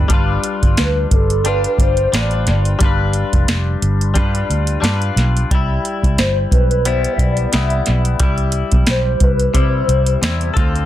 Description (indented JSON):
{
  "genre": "indie pop, bedroom pop",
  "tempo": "89 BPM",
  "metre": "4/4",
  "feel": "swing 55% on 16ths",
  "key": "unclear",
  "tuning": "A4 = 440 Hz",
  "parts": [
    { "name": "direct-recorded clean electric guitar", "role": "accompaniment", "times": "0.0-10.9 s", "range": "C3 to B4", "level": "-22 LUFS", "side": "left 5 dB", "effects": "lush chorus, warbly pitch drift, plate reverb" },
    { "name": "vintage muted fingered electric bass", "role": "bass", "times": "0.0-10.9 s", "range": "F1 to C3", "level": "-17 LUFS", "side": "equal", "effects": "none" },
    { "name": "soft vintage rhythm box", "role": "drums", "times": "0.1-10.9 s", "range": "hi-hat, kick drum, snare drum", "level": "-17 LUFS", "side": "equal", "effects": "none" },
    { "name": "hollow clarinet-like synth lead", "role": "melody", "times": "0.8-10.5 s", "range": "A4 to E5", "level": "-20 LUFS", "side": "left 1 dB", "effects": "ensemble chorus, plate reverb, digital delay" }
  ],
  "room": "light reverb",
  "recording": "dense, heavily limited modern master",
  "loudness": "-13 LUFS",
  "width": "side -13 dB against mid",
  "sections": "0.1-10.9 A section",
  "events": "none",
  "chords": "0.1 G7; 5.5 Cmaj7",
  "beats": "| 0.10 0.77 1.45 2.12 | 2.80 3.47 4.15 4.82 | 5.50 6.17 6.85 7.52 | 8.20 8.87 9.55 10.22"
}